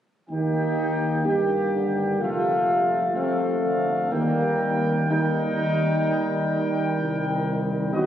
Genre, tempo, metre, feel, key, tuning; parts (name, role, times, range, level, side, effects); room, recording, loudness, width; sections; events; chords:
classical; 63 BPM; 4/4; straight; Eb major; A4 = 445 Hz
dark trumpet section; melody; 0.3-8.1 s; G4 to G5; -28 LUFS; left 1 dB
mellow French horn section; sustained chords; 0.3-8.1 s; A3 to G4; -26 LUFS; left 1 dB
warm trombone section; sustained chords; 0.3-8.1 s; C3 to Bb3; -27 LUFS; right 2 dB
mellow tuba; bass; 0.3-8.1 s; B1 to G2; -28 LUFS; right 1 dB
wet cathedral reverb, RT60 4.5 s; recorded on a phone in the room, studio reverb; -21 LUFS; side -10 dB against mid
0.3-8.1 A section
0.3 Eb; 2.2 F; 4.1 Eb